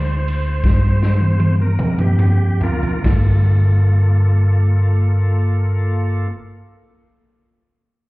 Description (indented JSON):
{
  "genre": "slow blues",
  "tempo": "45-57 BPM (dotted quarters)",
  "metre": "12/8",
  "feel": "straight",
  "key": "G minor",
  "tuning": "A4 = 440 Hz",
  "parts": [
    { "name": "bright tonewheel organ", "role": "sustained chords", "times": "0.0-6.3 s", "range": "Bb3 to C5", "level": "-27 LUFS", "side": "right 1 dB", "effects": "slow rotary speaker, overdrive" },
    { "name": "fingered electric bass", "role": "bass", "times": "0.0-6.2 s", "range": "G1 to G2", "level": "-15 LUFS", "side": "equal", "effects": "none" },
    { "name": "raw garage drum kit", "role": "drums", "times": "0.3-3.3 s", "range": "hi-hat, kick drum, ride cymbal, snare drum, toms", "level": "-19 LUFS", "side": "equal", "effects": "none" }
  ],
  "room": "little or no reverb",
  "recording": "heard muffled through a wall, club reverb, EQ",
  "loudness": "-14 LUFS",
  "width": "side -21 dB against mid",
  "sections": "0.0-3.0 A section; 3.0-8.1 B section",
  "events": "slowing down 0.0-3.0; tonewheel organ solo 0.0-3.0; drum fill 0.6-3.0",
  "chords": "0.0 Gm7; 3.0 Gm9"
}